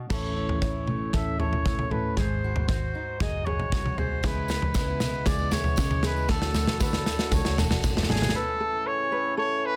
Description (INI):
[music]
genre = indie folk with a building arrangement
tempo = 116 BPM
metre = 4/4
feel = straight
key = A major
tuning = A4 = 440 Hz
[part]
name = fingerpicked steel-string acoustic guitar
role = accompaniment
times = 0.0-4.2 s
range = G#2 to F#4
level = -36 LUFS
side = equal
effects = none
[part]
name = mellow trumpet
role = melody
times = 0.1-9.8 s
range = G#4 to E5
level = -33 LUFS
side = equal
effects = none
[part]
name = ukulele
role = arpeggios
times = 0.1-9.8 s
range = G#4 to C#5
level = -39 LUFS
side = equal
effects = none
[part]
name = picked electric bass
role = bass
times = 0.1-8.3 s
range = E1 to C#3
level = -34 LUFS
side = equal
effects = none
[part]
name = natural country drum kit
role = drums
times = 0.1-8.4 s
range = crash cymbal, kick drum, snare drum, toms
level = -29 LUFS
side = equal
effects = none
[part]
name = picked steel-string acoustic guitar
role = accompaniment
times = 4.2-8.4 s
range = C#3 to F#4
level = -39 LUFS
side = equal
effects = none
[part]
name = pedal harmonium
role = sustained chords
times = 4.2-9.8 s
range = A2 to F#4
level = -42 LUFS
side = equal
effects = none
[part]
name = tambourine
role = percussion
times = 4.2-8.3 s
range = none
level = -46 LUFS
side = equal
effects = none
[sound]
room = light reverb, studio reverb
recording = dense, heavily limited modern master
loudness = -26 LUFS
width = mono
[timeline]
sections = 0.1-8.3 A section; 8.3-9.8 B section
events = build-up 0.1-8.3; drum fill 0.1-8.3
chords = 0.1 A; 2.2 G#7; 4.2 C#m7; 6.3 D; 8.3 A